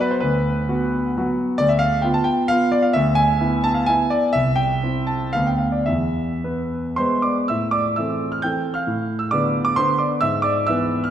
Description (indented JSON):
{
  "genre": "classical, romantic triple-time dance for piano with dotted rhythms",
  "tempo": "103-143 BPM",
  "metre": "3/4",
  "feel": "rubato",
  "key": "A minor",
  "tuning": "A4 = 441 Hz",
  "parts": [
    { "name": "warm concert grand piano", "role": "solo", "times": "0.0-11.1 s", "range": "C2 to G6", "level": "-18 LUFS", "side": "equal", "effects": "none" }
  ],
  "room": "wet scoring stage reverb, RT60 1.5 s",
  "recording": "recorded in a church or concert hall",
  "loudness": "-18 LUFS",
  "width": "side -10 dB against mid",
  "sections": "0.0-7.5 A section; 7.5-11.1 B section",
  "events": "none",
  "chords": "0.2 Bm/D; 1.6 Bdim/D; 3.0 E7/D; 4.4 C6; 5.3 Dm6; 5.9 E; 7.5 Am; 8.9 Bm7b5/A; 10.2 E/G#",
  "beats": "| 0.23 0.68 1.16 | 1.59 2.04 2.50 | 2.95 3.41 3.89 | 4.35 4.83 5.35 | 5.87 6.43 6.98 | 7.50 7.97 8.44 | 8.87 9.31 9.77 | 10.21 10.67"
}